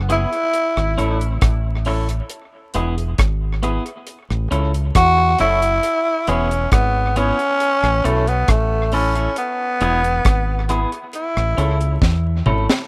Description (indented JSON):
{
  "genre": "roots reggae",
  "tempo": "68 BPM",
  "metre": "4/4",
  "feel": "straight",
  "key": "unclear",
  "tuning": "A4 = 441 Hz",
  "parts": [
    { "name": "deep dub fingered electric bass", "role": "bass", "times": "0.0-12.7 s", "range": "E1 to E2", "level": "-22 LUFS", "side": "equal", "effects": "none" },
    { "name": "growling tenor saxophone", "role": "melody", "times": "0.1-12.0 s", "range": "A3 to F#4", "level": "-21 LUFS", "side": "equal", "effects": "tape echo" },
    { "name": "clean electric guitar", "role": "accompaniment", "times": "0.1-12.7 s", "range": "B3 to A4", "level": "-28 LUFS", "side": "equal", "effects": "spring reverb, tape echo" },
    { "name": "deep reggae drum kit", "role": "drums", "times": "0.1-12.9 s", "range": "hi-hat, kick drum, rim click, snare drum, toms", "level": "-22 LUFS", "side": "equal", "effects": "tape echo" }
  ],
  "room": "little or no reverb",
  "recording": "rough home demo mix, vinyl crackle",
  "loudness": "-19 LUFS",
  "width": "mono",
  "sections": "0.0-12.9 A section",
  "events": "drum fill 12.0-12.9",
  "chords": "0.0 E; 0.5 A; 2.3 E; 4.1 A; 5.8 E; 7.6 A; 9.4 E; 11.1 A"
}